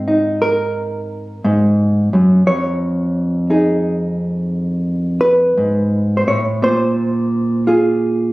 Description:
solo jazz; 58 BPM; 4/4; swing 66% on 8ths, rubato; A4 = 440 Hz
hollow-body jazz guitar; solo; 0.0-8.3 s; F2 to C#5; -14 LUFS; equal
light reverb; recorded on a phone in the room, studio reverb, compression; -14 LUFS; side -20 dB against mid
0.0-8.3 A section
0.0 Ab9; 2.5 Fm7b13; 6.6 Bb7(no3)

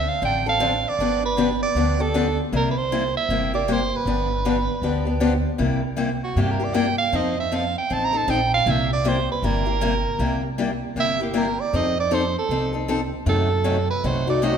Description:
acoustic string swing (jazz manouche); 156 BPM; 4/4; swing 61% on 8ths; C mixolydian; A4 = 439 Hz
edgy soprano saxophone; melody; 0.0-14.6 s; F#4 to Bb5; -23 LUFS; right 5 dB
upright bass; bass; 0.0-14.6 s; G1 to G2; -26 LUFS; equal
picked acoustic archtop guitar; accompaniment; 0.2-14.5 s; C3 to A4; -24 LUFS; left 3 dB
wet concert hall reverb, RT60 1.8 s; minimal, uncompressed stereo recording; -20 LUFS; side -7 dB against mid
0.0-5.6 A section; 5.6-14.6 B section
soprano saxophone solo 5.6-14.6
0.0 Dm7; 1.0 G7; 2.5 C7; 4.1 G7; 5.6 C7; 7.1 F7; 8.7 C7; 11.7 F7; 13.3 F#dim7

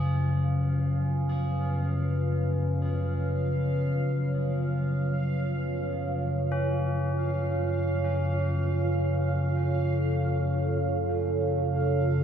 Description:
dark ambient drone; free time; F# harmonic minor; A4 = 440 Hz
deep dark ambient pad; sustained chords; 0.0-12.2 s; F#3 to C#5; -31 LUFS; right 2 dB; chorus, built-in reverb
tubular bells; arpeggios; 0.0-12.2 s; C#4 to G#4; -39 LUFS; left 1 dB; tape echo
analog drone; drone; 0.0-12.2 s; F#2 to C#3; -26 LUFS; left 1 dB; chorus
bubbling stepped-filter texture; texture; 0.0-12.2 s; E#5; -39 LUFS; right 4 dB; chorus, built-in reverb
wet plate reverb, RT60 2.6 s; dreamy mix soaked in reverb; -25 LUFS; side -8 dB against mid
0.0-12.2 A section
fade-in on ambient pad 0.0-12.2; fade-in on synth texture 0.0-12.2; filter sweep on synth drone 0.0-12.2
0.0 F#5; 7.7 F#mmaj7

